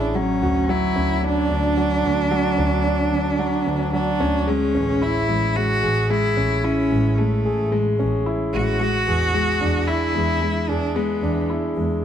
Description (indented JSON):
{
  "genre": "piano and strings electronica",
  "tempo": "111 BPM",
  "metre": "4/4",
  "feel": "straight",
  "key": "unclear",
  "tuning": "A4 = 440 Hz",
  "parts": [
    { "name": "clear cello", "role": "melody", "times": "0.0-11.5 s", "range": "A3 to F#4", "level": "-23 LUFS", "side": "right 1 dB", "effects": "none" },
    { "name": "warm concert grand piano", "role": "riff", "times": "0.0-12.0 s", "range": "F#3 to G#4", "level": "-22 LUFS", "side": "left 1 dB", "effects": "none" },
    { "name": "clear studio double bass section", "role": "bass", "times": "0.0-12.0 s", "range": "A1 to E2", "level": "-24 LUFS", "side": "equal", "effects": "none" }
  ],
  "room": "light reverb",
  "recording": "none",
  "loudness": "-18 LUFS",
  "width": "side -9 dB against mid",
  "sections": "0.0-12.0 A section",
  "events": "none",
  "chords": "0.2 Dmaj7; 4.5 Amaj7; 8.8 E7"
}